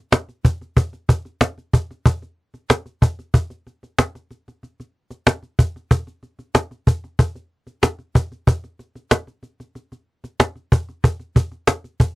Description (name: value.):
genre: pop.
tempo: 93 BPM.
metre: 4/4.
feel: straight.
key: none.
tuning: none.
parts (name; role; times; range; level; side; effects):
cajon; drums; 0.1-12.2 s; none; -15 LUFS; equal; none.
room: light reverb.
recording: dry, close 1970s-style studio recording.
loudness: -18 LUFS.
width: side -19 dB against mid.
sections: 0.0-2.1 A section; 2.1-12.2 B section.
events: none.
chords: none.